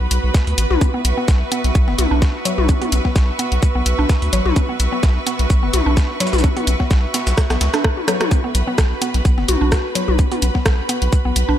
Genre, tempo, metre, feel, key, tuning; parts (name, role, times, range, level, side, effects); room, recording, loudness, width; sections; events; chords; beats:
minimal techno; 128 BPM; 4/4; swing 54% on 16ths; A4 = 440 Hz
round analog bass; bass; 0.0-11.6 s; F#1 to D2; -18 LUFS; equal; sidechain pumping
bubbling stepped-filter texture; texture; 0.0-11.6 s; B3 to E5; -29 LUFS; right 1 dB; chorus, built-in reverb, sidechain pumping
clear studio string section; texture; 0.0-11.6 s; F#4 to C#6; -26 LUFS; right 2 dB; sidechain pumping
dusty soul sampler-style drum kit; drums; 0.1-11.5 s; hi-hat, shaker, snare drum; -31 LUFS; equal; overdrive, high-pass filter on perc, high-pass filter on snare, high-pass filter on hats
techno drum kit; drums; 0.1-11.5 s; hi-hat, rim click; -23 LUFS; equal; overdrive
electronic kick drum; drums; 0.3-11.2 s; -16 LUFS; equal
electronic toms; percussion; 0.7-10.4 s; -24 LUFS; left 7 dB; analog delay
mallet-like synth pluck; riff; 0.9-11.5 s; F#3 to D4; -24 LUFS; equal; chorus, cassette tape, sidechain pumping, tape echo
soft struck synth lead; melody; 9.5-10.1 s; F#4; -28 LUFS; equal; chorus, analog delay
light reverb, digital ambience; -15 LUFS; side -11 dB against mid
0.0-11.6 A section
drum fill 7.4-8.3
0.0 B5
0.34 | 0.81 1.28 1.75 2.22 | 2.69 3.16 3.63 4.09 | 4.56 5.03 5.50 5.97 | 6.44 6.91 7.38 7.84 | 8.31 8.78 9.25 9.72 | 10.19 10.66 11.13